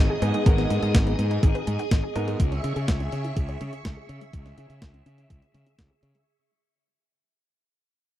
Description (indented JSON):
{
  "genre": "italo disco",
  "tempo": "124 BPM",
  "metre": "4/4",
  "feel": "straight",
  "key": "unclear",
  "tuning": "A4 = 440 Hz",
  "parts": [
    { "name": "phased string machine", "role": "sustained chords", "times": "0.0-6.2 s", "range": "G#4 to E6", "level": "-32 LUFS", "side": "left 1 dB", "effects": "ensemble chorus, phaser" },
    { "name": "wide unison pluck", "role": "arpeggios", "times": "0.0-6.3 s", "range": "G#3 to C#5", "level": "-34 LUFS", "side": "left 2 dB", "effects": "tape echo" },
    { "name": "clear baby grand piano", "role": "stabs", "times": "0.0-2.4 s", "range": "G#3 to A#4", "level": "-31 LUFS", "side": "right 2 dB", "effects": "tape echo" },
    { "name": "fuzz fingered electric bass", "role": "bass", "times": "0.0-6.1 s", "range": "G#1 to C#3", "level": "-27 LUFS", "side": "equal", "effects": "overdrive, tube saturation" },
    { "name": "downlifter", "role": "sound effects", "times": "0.1-2.4 s", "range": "none", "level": "-39 LUFS", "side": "equal", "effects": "none" },
    { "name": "clean 12-bit digital drum machine", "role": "drums", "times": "0.2-6.2 s", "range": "hi-hat, snare drum", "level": "-27 LUFS", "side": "equal", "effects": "overdrive" },
    { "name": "electronic kick drum", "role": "drums", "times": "0.5-5.9 s", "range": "none", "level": "-21 LUFS", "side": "equal", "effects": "overdrive" }
  ],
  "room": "little or no reverb",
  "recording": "dry, close 1970s-style studio recording",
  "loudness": "-22 LUFS",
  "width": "side -13 dB against mid",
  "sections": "0.0-6.3 A section",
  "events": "fade-out 0.0-6.3; filter sweep on synth arpeggio sound 0.0-6.3",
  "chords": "0.0 G#m; 2.4 C#m"
}